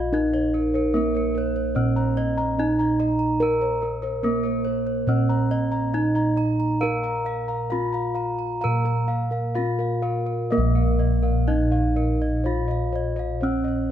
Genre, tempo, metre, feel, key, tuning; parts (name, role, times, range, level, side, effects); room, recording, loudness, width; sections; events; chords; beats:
Javanese gamelan; 62-73 BPM; 4/4; straight; A4 = 442 Hz
gamelan-type bronze metallophone; melody; 0.0-13.9 s; Bb3 to Bb4; -25 LUFS; right 1 dB
gamelan-type bronze metallophone; arpeggios; 0.0-13.9 s; Bb4 to Bb5; -31 LUFS; right 4 dB; slapback echo
gamelan-type bossed gongs; bass; 0.0-13.9 s; Bb1 to Bb4; -24 LUFS; equal
gamelan-type bossed gongs; arpeggios; 0.1-13.9 s; Bb4 to Bb5; -31 LUFS; left 4 dB
light reverb; close, detailed microphones; -21 LUFS; side -10 dB against mid
0.0-10.5 A section; 10.5-13.9 B section
| 0.12 0.94 1.76 2.58 | 3.40 4.23 5.07 5.93 | 6.81 7.71 8.62 9.56 | 10.52 11.48 12.45 13.42